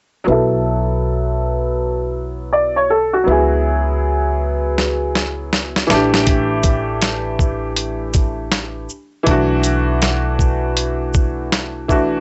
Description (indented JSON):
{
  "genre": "hip hop, jazz-hop",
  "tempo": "80 BPM",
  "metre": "4/4",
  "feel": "swing 63% on 16ths",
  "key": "B minor",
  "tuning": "A4 = 441 Hz",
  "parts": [
    { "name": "bright upright piano", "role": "accompaniment", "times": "0.2-12.2 s", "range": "E3 to D5", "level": "-20 LUFS", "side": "equal", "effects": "low-pass filter" },
    { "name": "upright bass", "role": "bass", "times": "0.3-12.2 s", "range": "A1 to C#2", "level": "-24 LUFS", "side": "equal", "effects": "none" },
    { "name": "boom bap sampler-style drum kit", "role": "drums", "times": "4.8-12.1 s", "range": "hi-hat, kick drum, shaker, snare drum", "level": "-19 LUFS", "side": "equal", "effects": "none" }
  ],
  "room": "light reverb",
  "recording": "dry, gritty hardware recording, nothing above 7.9 kHz",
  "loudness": "-18 LUFS",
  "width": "mono",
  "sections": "0.3-12.2 A section",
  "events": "filter sweep on upright piano 0.3-12.2; drum fill 4.8-6.3",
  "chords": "0.3 B7sus4; 3.3 C#m7; 5.9 A7sus4; 9.3 Bm7",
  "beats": "| 0.27 1.02 1.77 2.52 | 3.27 4.02 4.77 5.52 | 6.27 7.02 7.77 8.52 | 9.27 10.02 10.77 11.52"
}